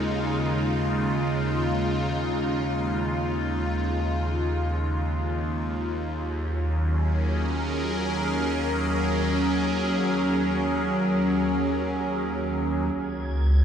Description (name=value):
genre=ambient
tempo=free time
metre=none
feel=none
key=unclear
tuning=A4 = 441 Hz
part: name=evolving wavetable pad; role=sustained chords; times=0.0-13.6 s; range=Eb2 to Bb4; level=-23 LUFS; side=equal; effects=phaser, built-in reverb
part: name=round analog bass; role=bass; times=12.9-13.6 s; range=Db2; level=-21 LUFS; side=equal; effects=none
part: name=wind-like tuned noise texture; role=texture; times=13.0-13.6 s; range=Ab6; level=-44 LUFS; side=right 6 dB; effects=built-in reverb
room=wet huge ambient reverb, RT60 9.0 s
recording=cassette tape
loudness=-23 LUFS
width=side -8 dB against mid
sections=0.0-13.0 A section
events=none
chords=0.0 Db/Eb; 5.3 Gbmaj7/Eb; 13.0 Db5